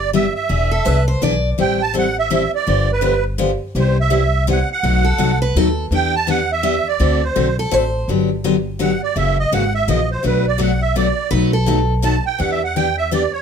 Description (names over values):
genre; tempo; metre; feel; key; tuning
acoustic string swing (jazz manouche); 166 BPM; 3/4; swing 60% on 8ths; G major; A4 = 440 Hz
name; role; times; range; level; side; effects
musette accordion; melody; 0.0-13.4 s; B4 to A5; -19 LUFS; right 6 dB; none
upright bass; bass; 0.0-13.3 s; E1 to E2; -20 LUFS; equal; none
picked steel-string acoustic guitar; accompaniment; 0.1-13.2 s; B2 to A4; -20 LUFS; left 3 dB; none
picked steel-string acoustic guitar; second line; 0.7-1.5, 5.0-8.1, 11.3-11.9 s; A4 to D5; -22 LUFS; right 1 dB; none
room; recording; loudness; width
light reverb; none; -15 LUFS; side -7 dB against mid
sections
0.0-8.1 A section; 8.1-13.4 B section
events
accordion solo 8.1-13.4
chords
0.5 E7; 1.6 Am7; 2.7 G7; 3.8 Cmaj7; 4.8 B7; 5.9 Em7; 7.0 D7; 8.1 Gmaj7; 9.2 F#7; 10.2 Bm7; 11.3 B7; 12.4 Em7